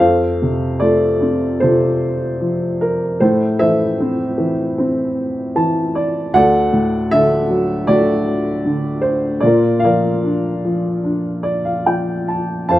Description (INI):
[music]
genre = classical, lyrical solo piano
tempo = 76 BPM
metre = 4/4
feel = rubato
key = F major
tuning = A4 = 438 Hz
[part]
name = dark upright piano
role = solo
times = 0.0-12.8 s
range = D2 to A5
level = -14 LUFS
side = equal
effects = none
[sound]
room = light reverb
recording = close, detailed microphones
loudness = -14 LUFS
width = side -14 dB against mid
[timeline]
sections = 0.0-12.8 A section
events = upright piano fill 5.2-6.3, 11.0-12.7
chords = 0.0 F; 3.2 Am; 6.3 D; 9.4 Bb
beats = | 0.00 0.81 1.61 2.42 | 3.21 4.00 4.78 5.55 | 6.33 7.11 7.88 8.65 | 9.43 10.24 11.05 11.87 | 12.70